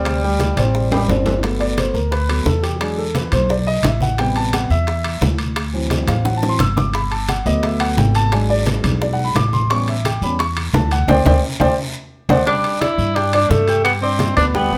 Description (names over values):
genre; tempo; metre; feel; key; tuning
latin, salsa; 174 BPM; 4/4; straight; G major; A4 = 444 Hz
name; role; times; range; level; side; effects
breathy tenor saxophone; melody; 0.0-1.2, 12.5-14.8 s; G3 to E4; -21 LUFS; equal; plate reverb
dark grand piano; accompaniment; 0.0-14.8 s; C3 to G6; -23 LUFS; equal; none
upright bass; bass; 0.0-14.8 s; G1 to G2; -22 LUFS; equal; none
bongos; percussion; 0.1-14.8 s; none; -28 LUFS; equal; none
congas; percussion; 0.1-14.8 s; none; -27 LUFS; equal; none
guiro; percussion; 0.1-14.8 s; none; -35 LUFS; equal; none
timbales; percussion; 0.1-14.5 s; none; -29 LUFS; equal; none
room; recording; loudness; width
moderate studio reverb, RT60 0.7 s; none; -18 LUFS; mono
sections
0.0-1.4 A section; 1.4-12.5 B section; 12.5-14.8 C section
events
drum fill 0.6-1.4, 6.1-6.9, 11.8-12.5; grand piano solo 1.4-12.5; band accent 11.1-12.5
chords
0.1 D7sus4; 1.4 Gmaj9; 2.8 E7; 4.2 Am7; 5.6 D7; 6.9 Gmaj7; 8.3 Bm6; 9.7 A7; 11.1 D7sus4; 11.8 D7; 12.5 Dsus4; 13.9 G